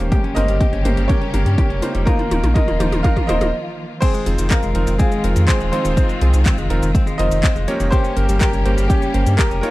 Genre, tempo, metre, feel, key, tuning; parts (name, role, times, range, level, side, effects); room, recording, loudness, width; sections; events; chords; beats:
italo disco; 123 BPM; 4/4; straight; F minor; A4 = 440 Hz
clear studio string section; sustained chords; 0.0-9.7 s; Db3 to G4; -26 LUFS; equal; low-pass filter
direct-recorded clean electric guitar; arpeggios; 0.0-9.7 s; Eb3 to Bb4; -28 LUFS; left 4 dB; low-pass filter, tape echo
warm electric grand piano; stabs; 0.0-9.7 s; Bb3 to Db5; -26 LUFS; right 2 dB; low-pass filter
round analog bass; bass; 0.0-9.6 s; Eb1 to G2; -18 LUFS; equal; tube saturation
house drum kit; drums; 0.0-9.7 s; cabasa, crash cymbal, handclaps, hi-hat, toms; -26 LUFS; left 1 dB; overdrive, studio reverb
electronic kick drum; drums; 0.1-9.5 s; -17 LUFS; equal; overdrive, studio reverb
bright baby grand piano; melody; 0.3-9.7 s; Db4 to F5; -23 LUFS; equal; tape echo
light reverb; dry, close 1970s-style studio recording; -15 LUFS; side -18 dB against mid
0.0-4.0 A section; 4.0-9.7 B section
drum fill 0.0-3.5; break 3.5-4.0
0.1 Gdim; 2.1 Ebsus2; 4.0 Fm7; 7.9 Gdim
| 0.12 0.60 1.09 1.58 | 2.07 2.56 3.04 3.53 | 4.02 4.51 5.00 5.48 | 5.97 6.46 6.95 7.43 | 7.92 8.41 8.90 9.39